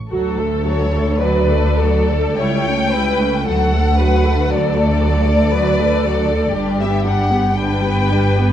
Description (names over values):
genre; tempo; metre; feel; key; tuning
classical, slow romantic movement for string orchestra; 49-60 BPM; 3/4; rubato; D major; A4 = 445 Hz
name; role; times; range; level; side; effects
warm studio violin section; second line; 0.1-8.5 s; G4 to C#5; -22 LUFS; left 2 dB; none
warm studio viola section; accompaniment; 0.1-8.5 s; F#3 to A4; -21 LUFS; right 1 dB; none
warm studio cello section; bass; 0.1-8.5 s; C#2 to G2; -20 LUFS; right 1 dB; none
warm studio double bass section; bass; 0.1-8.5 s; G1 to D2; -20 LUFS; right 2 dB; none
warm studio violin section; melody; 0.7-8.5 s; C#5 to G5; -21 LUFS; left 3 dB; none
room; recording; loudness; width
moderate scoring stage reverb, RT60 1.6 s; dark, warm production; -14 LUFS; side -10 dB against mid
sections
0.1-8.5 A section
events
none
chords
0.1 D; 2.4 A7/C#; 3.5 D; 6.5 G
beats
| 0.10 1.21 2.39 | 3.48 4.50 5.53 | 6.54 7.55